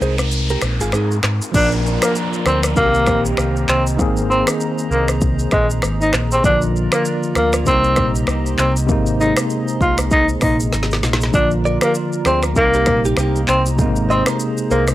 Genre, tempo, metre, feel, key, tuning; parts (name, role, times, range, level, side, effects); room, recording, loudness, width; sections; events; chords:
afrobeats; 98 BPM; 4/4; swing 58% on 16ths; Ab lydian; A4 = 442 Hz
barky tine electric piano; accompaniment; 0.0-14.9 s; Cb3 to Bb4; -22 LUFS; left 1 dB; medium stereo tremolo
direct-recorded clean electric guitar; riff; 0.0-1.2, 11.7-14.8 s; Eb4 to Eb5; -24 LUFS; right 4 dB; wide subtle chorus, analog delay
fingered electric bass; bass; 0.0-14.9 s; Ab1 to Ab2; -20 LUFS; equal
afro-pop drum kit; drums; 0.0-14.9 s; crash cymbal, finger snaps, handclaps, hi-hat, kick drum, rim click, shaker, snare drum; -20 LUFS; equal
noise sweep and downlifter; sound effects; 0.0-6.4 s; -30 LUFS; left 1 dB
hollow soft pad; sustained chords; 1.8-14.9 s; F4 to Bb5; -28 LUFS; right 2 dB; chorus
breathy tenor saxophone; melody; 1.6-14.9 s; Ab3 to F4; -18 LUFS; equal; analog delay
little or no reverb; dry, gritty hardware recording, transformer saturation; -14 LUFS; side -15 dB against mid
0.0-1.5 A section; 1.5-14.9 B section
break 0.0-1.5; noise sweep 0.0-1.5; drum fill 10.7-11.3
0.0 Abadd9; 1.5 Bb; 2.8 Cm7; 4.0 Abadd9; 6.4 Bb; 7.7 Cm7; 8.9 Abadd9; 11.3 Bb; 12.6 Cm7; 13.8 Abadd9